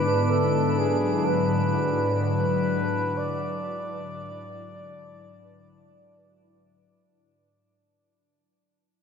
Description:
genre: ambient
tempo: free time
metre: none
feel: none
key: unclear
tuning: A4 = 440 Hz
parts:
  - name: mellow flugelhorn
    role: melody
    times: 0.0-6.6 s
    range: G#4 to D5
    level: -28 LUFS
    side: equal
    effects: diffuse ambient delay
  - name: airy breathy pad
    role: sustained chords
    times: 0.0-7.1 s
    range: G#2 to B4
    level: -26 LUFS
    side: left 2 dB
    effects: chorus, phaser
  - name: drifting glass-harmonics texture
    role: texture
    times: 0.0-7.2 s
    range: D4 to D7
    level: -32 LUFS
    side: right 5 dB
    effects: chorus, built-in reverb
room: wet huge ambient reverb, RT60 7.9 s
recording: dark, warm production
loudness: -22 LUFS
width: side -6 dB against mid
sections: 0.0-7.1 A section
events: fade-out 0.0-7.1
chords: 0.0 E7/G#

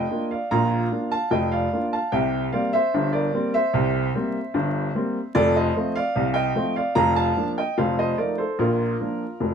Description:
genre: ragtime piano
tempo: 74 BPM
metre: 2/4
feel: straight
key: Bb major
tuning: A4 = 440 Hz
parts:
  - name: clear upright piano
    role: solo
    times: 0.0-9.5 s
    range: F1 to Bb5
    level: -21 LUFS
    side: equal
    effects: none
room: light reverb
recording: close, detailed microphones, vinyl crackle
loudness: -20 LUFS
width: side -7 dB against mid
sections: 0.0-9.5 A section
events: none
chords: 0.0 Bb; 2.1 C7; 5.3 F7; 7.0 Bb/F; 7.8 F7; 8.6 Bb

